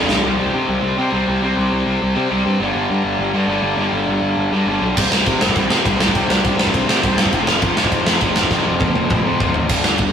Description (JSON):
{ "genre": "punk rock", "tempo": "203 BPM", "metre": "4/4", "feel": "straight", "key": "unclear", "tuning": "A4 = 438 Hz", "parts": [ { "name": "distorted electric guitar", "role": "riff", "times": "0.0-10.1 s", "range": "F2 to C4", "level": "-19 LUFS", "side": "left 1 dB", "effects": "overdrive" }, { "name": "fuzz picked electric bass", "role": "bass", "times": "0.0-10.1 s", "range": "F1 to C3", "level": "-21 LUFS", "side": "equal", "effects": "overdrive" }, { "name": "big rock drum kit", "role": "drums", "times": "0.1-0.2, 5.0-10.1 s", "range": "crash cymbal, kick drum, ride cymbal, snare drum, toms", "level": "-17 LUFS", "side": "equal", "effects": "none" } ], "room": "light reverb", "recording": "rough rehearsal-room recording, warm saturation", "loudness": "-15 LUFS", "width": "side -8 dB against mid", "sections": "0.2-9.7 A section", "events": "drum fill 0.0, 8.5-9.7", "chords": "0.2 C5; 2.6 G5; 5.0 C5; 7.3 F5", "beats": "| 0.24 0.54 0.83 1.13 | 1.42 1.72 2.02 2.31 | 2.61 2.90 3.20 3.49 | 3.79 4.08 4.38 4.67 | 4.97 5.26 5.56 5.86 | 6.15 6.45 6.74 7.04 | 7.33 7.63 7.93 8.22 | 8.52 8.81 9.11 9.41 | 9.70 10.00" }